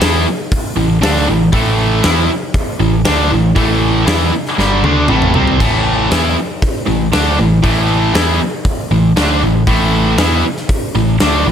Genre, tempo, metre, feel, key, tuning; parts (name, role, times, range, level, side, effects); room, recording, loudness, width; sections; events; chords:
hard rock; 118 BPM; 4/4; straight; A minor; A4 = 440 Hz
high-gain distorted guitar; riff; 0.0-11.5 s; G2 to E4; -13 LUFS; equal; distortion
picked electric bass; bass; 0.0-11.5 s; G1 to E2; -16 LUFS; equal
huge arena drum kit; drums; 0.0-11.3 s; crash cymbal, hi-hat, kick drum, snare drum, toms; -17 LUFS; equal
light reverb; -11 LUFS; side -8 dB against mid
0.0-5.6 A section; 5.6-11.5 B section
drum fill 4.6-5.6
0.0 Am; 5.6 A5